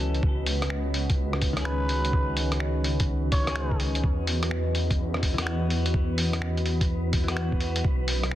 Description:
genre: future garage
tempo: 126 BPM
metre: 4/4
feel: swing 65% on 16ths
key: C# minor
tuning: A4 = 444 Hz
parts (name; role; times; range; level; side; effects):
- clean electric guitar; accompaniment; 0.0-7.9 s; D#3 to A4; -33 LUFS; left 2 dB; vintage 12-bit sampler grit, sidechain pumping, tape echo
- deep dark ambient pad; sustained chords; 0.0-8.3 s; C#4 to D#5; -34 LUFS; equal; chorus, built-in reverb, sidechain pumping
- swelling detuned saw bass; bass; 0.0-8.3 s; B1 to E2; -28 LUFS; equal; sidechain pumping
- wind-like tuned noise texture; texture; 0.0-8.3 s; B3 to B4; -39 LUFS; right 2 dB; built-in reverb
- lo-fi sampler-style drum kit; drums; 0.1-8.3 s; finger snaps, hi-hat, rim click; -31 LUFS; equal; small room ambience, soft clipping on snare
- electronic kick drum; drums; 0.2-8.0 s; none; -25 LUFS; equal; small room ambience
- trumpet with cup mute; melody; 1.7-3.8 s; B4 to C#5; -33 LUFS; right 1 dB; tape echo
room: light reverb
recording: dense, heavily limited modern master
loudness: -24 LUFS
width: side -13 dB against mid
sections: 0.2-8.3 A section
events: none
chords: 0.2 C#sus2; 4.0 Esus2; 7.8 B

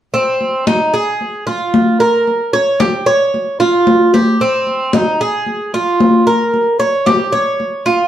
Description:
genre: latin, Cuban son and guajira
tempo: 113 BPM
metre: 4/4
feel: straight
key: Ab major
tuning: A4 = 441 Hz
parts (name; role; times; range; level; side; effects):
- Cuban tres; arpeggios; 0.1-8.1 s; C4 to Db5; -13 LUFS; right 1 dB; none
- congas; percussion; 0.1-8.1 s; none; -16 LUFS; left 2 dB; none
room: wet studio reverb, RT60 0.7 s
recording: heard from further back in the room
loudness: -12 LUFS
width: side -11 dB against mid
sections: 0.1-8.1 A section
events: none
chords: none

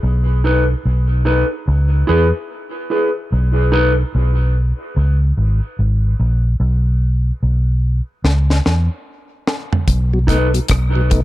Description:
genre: dub reggae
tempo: 73 BPM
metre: 4/4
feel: swing 63% on 16ths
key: C# minor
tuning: A4 = 445 Hz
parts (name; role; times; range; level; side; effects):
- vintage muted fingered electric bass; bass; 0.0-11.2 s; G#1 to E2; -14 LUFS; equal; none
- mellow electric guitar; accompaniment; 0.4-3.9, 10.3-10.5 s; D#4 to B4; -20 LUFS; equal; dub echo
- deep reggae drum kit; drums; 8.2-11.2 s; hi-hat, kick drum, rim click, snare drum, toms; -18 LUFS; equal; none
- mellow tonewheel organ; accompaniment; 10.1-11.2 s; B2 to D#4; -22 LUFS; left 2 dB; slow rotary speaker
room: small room ambience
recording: none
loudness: -14 LUFS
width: side -15 dB against mid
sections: 0.0-9.9 A section; 9.9-11.2 B section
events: drum fill 8.2-9.9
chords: 0.0 B7; 1.7 C#m7; 3.3 N.C.; 4.9 C#5; 6.6 N.C.; 8.2 C#m; 9.9 B7

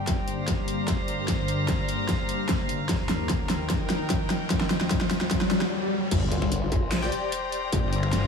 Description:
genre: heavy wobble dubstep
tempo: 149 BPM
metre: 4/4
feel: half-time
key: G minor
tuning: A4 = 440 Hz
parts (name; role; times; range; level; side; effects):
- lush unison pad; sustained chords; 0.0-5.7 s; Eb2 to D5; -32 LUFS; left 1 dB; chorus, sidechain pumping
- riser, swell and sub drop; sound effects; 2.7-7.7 s; none; -32 LUFS; left 1 dB; none
- warm chamber string section; texture; 0.0-8.3 s; C4 to Bb5; -33 LUFS; left 1 dB; sidechain pumping
- dubstep drum kit; drums; 0.1-8.2 s; crash cymbal, finger snaps, handclaps, hi-hat, snare drum; -28 LUFS; equal; none
- electronic kick drum; drums; 0.1-7.8 s; none; -29 LUFS; equal; distortion
- wobble bass; bass; 6.1-8.3 s; G1 to Bb1; -25 LUFS; left 1 dB; chorus, overdrive
- formant-sweep wobble bass; bass; 6.3-7.1 s; G1 to Bb1; -28 LUFS; equal; chorus, overdrive
- supersaw stab; stabs; 7.0-8.3 s; G4 to G5; -31 LUFS; left 3 dB; digital delay
room: light reverb, digital ambience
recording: none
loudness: -24 LUFS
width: side -6 dB against mid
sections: 0.0-6.1 A section; 6.1-8.3 B section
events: build-up 0.0-6.1; drum fill 0.0-5.7; filter sweep on analog synth pad 0.0-6.1; riser 2.7-6.1; swell 5.3-6.1; stop 5.7-6.1; drop 6.1-8.3; impact 6.1-7.7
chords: 0.0 Gm; 2.9 Eb; 6.1 Gm

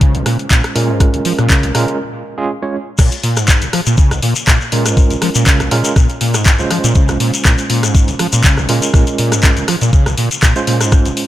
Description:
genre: acid house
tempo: 121 BPM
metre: 4/4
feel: swing 54% on 16ths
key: Bb minor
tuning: A4 = 439 Hz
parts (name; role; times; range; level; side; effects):
- overdriven acid bass; riff; 0.0-11.1 s; Bb1 to F3; -16 LUFS; equal; distortion, ensemble chorus, sidechain pumping, tape echo
- overdriven tine electric piano; stabs; 0.0-11.3 s; Ab3 to Db5; -20 LUFS; right 3 dB; fast tremolo, tape echo
- electronic kick drum; drums; 0.0-11.0 s; none; -10 LUFS; equal; none
- punchy analog drum machine; drums; 0.0-11.3 s; crash cymbal, handclaps, hi-hat, rim click; -18 LUFS; left 1 dB; none
- shekere; percussion; 3.0-11.1 s; none; -21 LUFS; left 5 dB; none
room: light reverb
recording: none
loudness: -11 LUFS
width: side -14 dB against mid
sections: 0.0-3.0 A section; 3.0-11.3 B section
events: break 2.0-3.0; drop 3.0-11.3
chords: 0.0 Bbm7

